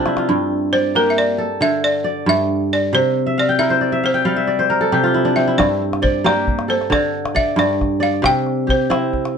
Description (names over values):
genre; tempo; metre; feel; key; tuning
west african traditional, West African string and xylophone music; 90 BPM (dotted quarters); 12/8; straight; G dorian; A4 = 440 Hz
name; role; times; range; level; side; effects
kora; arpeggios; 0.0-9.4 s; G2 to G5; -17 LUFS; equal; none
calabash; percussion; 0.1-0.3, 5.6-9.3 s; none; -23 LUFS; left 1 dB; none
balafon; melody; 0.7-9.3 s; Bb4 to G5; -19 LUFS; equal; plate reverb
room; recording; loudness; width
moderate studio reverb, RT60 0.6 s; nothing above 10.6 kHz; -15 LUFS; side -6 dB against mid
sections
0.3-9.4 A section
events
kora fill 0.0, 3.3-5.6; drum fill 0.0; balafon solo 0.3-9.4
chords
0.3 Gm; 2.9 C; 5.6 Gm; 8.2 C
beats
| 0.28 0.95 1.61 2.27 | 2.94 3.60 4.26 4.93 | 5.59 6.25 6.91 7.58 | 8.24 8.90